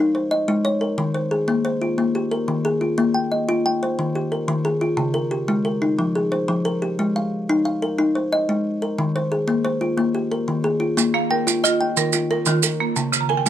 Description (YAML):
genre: southern african traditional, mbira-style interlocking cycle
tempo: 120 BPM (dotted quarters)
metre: 12/8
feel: straight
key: unclear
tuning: A4 = 440 Hz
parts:
  - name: kalimba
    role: arpeggios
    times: 0.0-13.5 s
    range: Db3 to G5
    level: -19 LUFS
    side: left 1 dB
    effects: none
  - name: maracas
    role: percussion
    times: 11.0-13.5 s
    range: none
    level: -21 LUFS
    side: right 10 dB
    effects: none
  - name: buzzing marimba with hard mallets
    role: arpeggios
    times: 11.1-13.5 s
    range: Db3 to Bb5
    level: -22 LUFS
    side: right 6 dB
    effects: none
room: little or no reverb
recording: close, detailed microphones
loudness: -19 LUFS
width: side -11 dB against mid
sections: 0.0-11.0 A section; 11.0-13.5 A section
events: marimba fill 13.1-13.5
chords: 0.0 Ab; 1.0 Eb; 3.0 Bb5; 4.0 Eb; 5.0 Db; 6.0 Fm; 7.0 Ab; 9.0 Eb; 11.0 Bb5; 12.0 Eb; 13.0 Db5